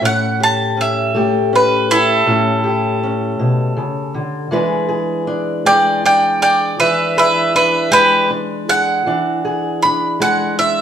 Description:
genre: acoustic country blues, solo or duo.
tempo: 53 BPM (dotted quarters).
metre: 12/8.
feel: straight.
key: unclear.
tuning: A4 = 443 Hz.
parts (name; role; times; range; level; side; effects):
bowl-back mandolin; melody; 0.0-10.8 s; E4 to B5; -14 LUFS; right 1 dB; none.
fingerpicked steel-string acoustic guitar; accompaniment; 0.0-10.8 s; A2 to B4; -18 LUFS; left 1 dB; none.
room: wet large studio reverb, RT60 1.2 s.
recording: band playing live in one room.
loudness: -13 LUFS.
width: side -9 dB against mid.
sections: 0.0-10.8 A section.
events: none.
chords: 0.0 A7; 4.5 E7.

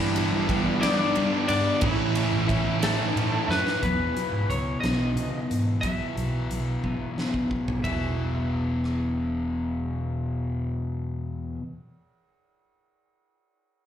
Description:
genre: quiet-loud alternative rock.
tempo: 60 BPM (dotted quarters).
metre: 6/8.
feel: straight.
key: unclear.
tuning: A4 = 440 Hz.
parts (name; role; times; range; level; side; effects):
lightly driven lead guitar; melody; 0.0-11.6 s; E3 to E5; -28 LUFS; equal; slapback echo.
fuzz guitar; riff; 0.0-3.8 s; G2 to E4; -32 LUFS; right 11 dB; distortion, slapback echo.
high-gain distorted guitar; riff; 0.0-3.8 s; G2 to E4; -34 LUFS; right 2 dB; distortion.
overdriven electric guitar; riff; 0.0-11.6 s; E2 to E4; -30 LUFS; left 4 dB; slapback echo.
picked electric bass; bass; 0.0-11.6 s; E1 to G3; -29 LUFS; right 1 dB; none.
huge arena drum kit; drums; 0.2-9.0 s; hi-hat, kick drum, ride cymbal, rim click, snare drum, toms; -31 LUFS; right 1 dB; none.
fingerpicked steel-string acoustic guitar; arpeggios; 3.8-11.6 s; E3 to G#4; -33 LUFS; right 2 dB; slapback echo.
room: light reverb.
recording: live gig heard through the venue's PA, club reverb.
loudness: -24 LUFS.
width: side -10 dB against mid.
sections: 0.0-3.8 A section; 3.8-7.8 B section; 7.8-11.9 C section.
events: drum fill 3.5-3.8, 6.8-7.8.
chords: 0.0 G; 1.8 A; 3.8 Esus2; 7.8 Eadd9.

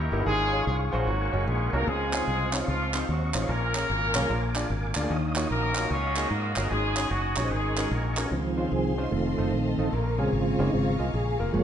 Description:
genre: uptempo gospel.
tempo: 149 BPM.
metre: 4/4.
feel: swing 65% on 8ths.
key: Db major.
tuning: A4 = 440 Hz.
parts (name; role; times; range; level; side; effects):
clear horn section; melody; 0.0-8.3 s; F3 to Db5; -29 LUFS; equal; none.
tonewheel organ; sustained chords; 0.0-11.6 s; Db3 to Eb6; -30 LUFS; right 1 dB; slow rotary speaker, chorus vibrato.
fingered electric bass; bass; 0.0-11.6 s; F1 to Ab2; -29 LUFS; equal; none.
clear concert grand piano; accompaniment; 0.1-11.5 s; Ab2 to Eb5; -32 LUFS; equal; none.
group handclap; percussion; 2.1-8.2 s; none; -34 LUFS; right 4 dB; none.
clear studio string section; sustained chords; 8.3-11.6 s; C5 to Db6; -39 LUFS; left 2 dB; none.
room: moderate large studio reverb, RT60 1.5 s.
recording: nothing above 10.6 kHz.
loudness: -24 LUFS.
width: side -9 dB against mid.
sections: 0.0-8.3 A section; 8.3-11.6 B section.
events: tonewheel organ solo 8.3-11.6.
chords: 0.3 Db/Ab; 1.1 Ab9sus4; 1.9 Dbmaj9; 3.5 Bbm7; 4.3 Bb7; 5.1 Ebm9; 6.7 Ab7sus4; 7.5 Ab9sus4; 8.3 Dbmaj7; 9.1 F7; 9.9 Bbm7.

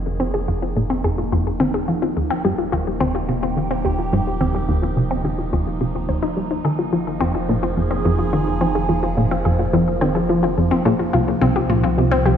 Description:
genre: ambient, sequencer-driven space music.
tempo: 107 BPM.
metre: 4/4.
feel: straight.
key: F minor.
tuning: A4 = 438 Hz.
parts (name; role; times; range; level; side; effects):
phased analog pad; sustained chords; 0.0-12.4 s; F3 to Ab4; -25 LUFS; right 1 dB; phaser, chorus.
wide unison pluck; arpeggios; 0.0-12.3 s; F3 to C5; -23 LUFS; moving between left 5 dB and right 1 dB; auto-pan, cassette tape, ping-pong delay.
plucky analog bass; riff; 0.0-12.4 s; C2 to G3; -21 LUFS; equal; lush chorus, ping-pong delay.
warm sub bass; bass; 0.0-12.4 s; Eb1 to C2; -27 LUFS; right 1 dB; none.
room: wet echo chamber reverb, RT60 2.4 s.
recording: echo-heavy mix.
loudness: -17 LUFS.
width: side -8 dB against mid.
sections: 0.0-12.4 A section.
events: fade-in on analog synth pad 0.0-12.4; filter sweep on analog synth bass 0.0-12.4; filter sweep on synth arpeggio sound 0.0-12.4.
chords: 0.0 Fm; 2.2 Eb6; 6.6 Fm; 11.1 Cm.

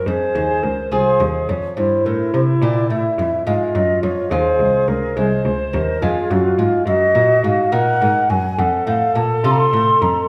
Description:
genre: classical, baroque-style sonata movement with continuo.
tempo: 70 BPM (dotted quarters).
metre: 12/8.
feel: rubato.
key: unclear.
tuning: A4 = 444 Hz.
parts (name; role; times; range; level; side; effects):
mellow tenor recorder; melody; 0.0-10.3 s; E4 to C5; -25 LUFS; equal; none.
mellow baroque flute; second line; 0.0-10.3 s; F4 to C6; -20 LUFS; equal; none.
lute; accompaniment; 0.0-10.3 s; Eb2 to Bb4; -28 LUFS; equal; none.
rich cello; bass; 0.0-10.3 s; C2 to C3; -23 LUFS; equal; none.
room: wet recital hall reverb, RT60 1.5 s.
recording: recorded in a church or concert hall.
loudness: -17 LUFS.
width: mono.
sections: 0.0-10.3 A section.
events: none.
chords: 0.1 Fm; 1.8 Edim/G; 3.5 Fm; 6.9 Ebm/Gb; 8.6 F.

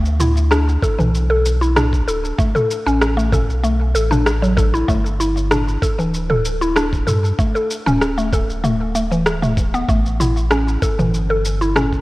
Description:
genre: organic downtempo.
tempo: 96 BPM.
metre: 4/4.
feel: swing 53% on 16ths.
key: unclear.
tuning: A4 = 440 Hz.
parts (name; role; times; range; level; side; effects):
warm sub bass; bass; 0.0-12.0 s; D1 to G2; -19 LUFS; equal; transformer saturation.
deep house drum kit; drums; 0.1-12.0 s; rim click, shaker, toms; -21 LUFS; equal; overdrive.
mallet-like synth pluck; arpeggios; 0.2-12.0 s; E3 to A4; -19 LUFS; equal; chorus, ping-pong delay.
electronic kick drum; drums; 0.8-12.0 s; none; -19 LUFS; equal; none.
room: light reverb.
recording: worn, warbling old tape, cassette tape, warbly pitch drift.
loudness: -15 LUFS.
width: side -19 dB against mid.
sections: 0.0-12.0 A section.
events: none.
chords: 0.0 D5; 4.9 G5; 9.9 A7.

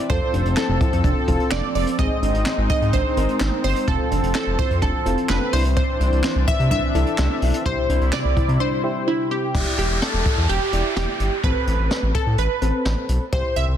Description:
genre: synth-pop.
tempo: 127 BPM.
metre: 4/4.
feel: straight.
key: C major.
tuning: A4 = 440 Hz.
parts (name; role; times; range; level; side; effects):
funky polysynth comp; melody; 0.0-13.7 s; E4 to E5; -24 LUFS; right 1 dB; chorus, ping-pong delay.
warm analog pad; sustained chords; 0.0-9.5 s; C3 to A4; -27 LUFS; left 1 dB; wide subtle chorus.
soft electric-piano-like synth keys; accompaniment; 0.1-13.8 s; C4 to D5; -29 LUFS; left 2 dB; chorus, tremolo.
soft round pluck; arpeggios; 0.1-9.5 s; C4 to E4; -31 LUFS; right 3 dB; chorus, ping-pong delay.
smooth synth bass; bass; 0.1-13.8 s; E1 to C3; -22 LUFS; equal; none.
jazz brush drum kit; drums; 0.1-13.7 s; crash cymbal, handclaps, hi-hat, kick drum, snare drum; -24 LUFS; equal; none.
downlifter; sound effects; 9.5-13.3 s; none; -28 LUFS; right 1 dB; none.
room: light reverb, studio ambience.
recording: dense, heavily limited modern master.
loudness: -18 LUFS.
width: side -10 dB against mid.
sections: 0.0-9.5 A section; 9.5-13.8 B section.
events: break 8.6-9.5.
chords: 0.1 F; 2.0 Ab; 3.9 F; 5.5 Cadd9; 7.7 C; 9.5 Em7; 11.4 Amadd9.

